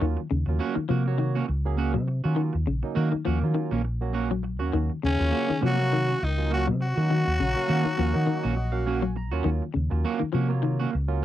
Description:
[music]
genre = afrobeat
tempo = 102 BPM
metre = 4/4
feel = swing 55% on 16ths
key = Eb dorian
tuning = A4 = 440 Hz
[part]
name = barky tine electric piano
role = accompaniment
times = 0.0-11.2 s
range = Gb3 to Bb5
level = -34 LUFS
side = right 8 dB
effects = wide subtle chorus
[part]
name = semi-hollow electric guitar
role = arpeggios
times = 0.0-10.9 s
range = Db3 to Gb3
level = -30 LUFS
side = left 6 dB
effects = none
[part]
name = electric guitar at the edge of break-up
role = stabs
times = 0.0-11.2 s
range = Bb3 to Gb4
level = -31 LUFS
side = right 8 dB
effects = none
[part]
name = hollow-body short-scale fingered electric bass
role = bass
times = 0.0-11.2 s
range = Bb1 to Eb3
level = -25 LUFS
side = equal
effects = none
[part]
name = breathy tenor saxophone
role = melody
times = 5.1-9.1 s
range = Db4 to Gb4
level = -29 LUFS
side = equal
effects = none
[part]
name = brilliant trombone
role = second line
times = 5.1-9.1 s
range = Db4 to Gb4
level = -35 LUFS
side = right 2 dB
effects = none
[part]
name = clear trombone section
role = second line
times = 5.1-9.2 s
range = Db3 to Gb3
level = -33 LUFS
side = left 7 dB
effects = none
[sound]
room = little or no reverb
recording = dry, close 1970s-style studio recording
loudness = -23 LUFS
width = side -12 dB against mid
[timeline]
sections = 0.0-11.2 A section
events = tine electric piano fill 8.3-9.5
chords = 0.0 Ebm7

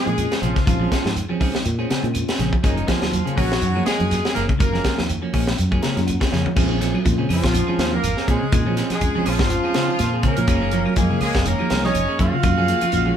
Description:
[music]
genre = afrobeat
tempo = 122 BPM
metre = 4/4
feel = swing 55% on 16ths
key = Bb minor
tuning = A4 = 439 Hz
[part]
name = clear horn section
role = melody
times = 0.0-13.2 s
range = Eb3 to F5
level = -24 LUFS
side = equal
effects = none
[part]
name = electric guitar at the edge of break-up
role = stabs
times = 0.0-13.2 s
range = F3 to Ab4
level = -28 LUFS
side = right 4 dB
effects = none
[part]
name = mellow tine electric piano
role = accompaniment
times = 0.1-13.2 s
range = Ab3 to Bb5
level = -30 LUFS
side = left 3 dB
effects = medium stereo tremolo
[part]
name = semi-hollow electric guitar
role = arpeggios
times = 0.1-13.2 s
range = C3 to Gb3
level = -26 LUFS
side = right 1 dB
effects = none
[part]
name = fingered electric bass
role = bass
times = 0.1-13.1 s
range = F1 to Bb2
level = -24 LUFS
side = equal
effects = none
[part]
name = tight funk drum kit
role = drums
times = 0.1-13.0 s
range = crash cymbal, hi-hat, kick drum, snare drum, toms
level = -22 LUFS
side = left 1 dB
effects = none
[part]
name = claves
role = percussion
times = 0.2-12.9 s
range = none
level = -39 LUFS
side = left 3 dB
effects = none
[part]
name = shekere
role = percussion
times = 0.2-13.1 s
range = none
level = -30 LUFS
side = right 2 dB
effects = none
[part]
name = bright tenor saxophone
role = second line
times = 7.3-13.2 s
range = F3 to Gb4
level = -30 LUFS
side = right 3 dB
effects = none
[sound]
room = moderate studio reverb, RT60 0.8 s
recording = band playing live in one room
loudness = -17 LUFS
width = side -9 dB against mid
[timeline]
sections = 0.0-6.6 A section; 6.6-13.2 B section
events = tine electric piano fill 5.6-6.6; drum fill 6.3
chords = 0.0 Bbm9; 2.6 Gbmaj9; 6.6 Bbm9; 10.5 Gbmaj9

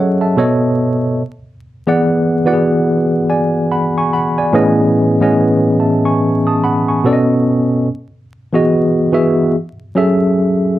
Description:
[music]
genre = R&B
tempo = 72 BPM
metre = 4/4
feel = swing 60% on 16ths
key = unclear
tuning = A4 = 440 Hz
[part]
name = tine electric piano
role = solo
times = 0.0-10.8 s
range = A2 to D#6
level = -12 LUFS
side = equal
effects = overdrive, fast stereo tremolo
[sound]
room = wet small room reverb, RT60 0.5 s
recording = dark, warm production, vinyl crackle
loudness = -12 LUFS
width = side -14 dB against mid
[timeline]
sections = 0.0-10.8 A section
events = none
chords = 0.4 B9; 1.2 E7; 4.5 Amaj9#11; 7.0 B7; 7.9 Emaj9; 9.5 F#m7

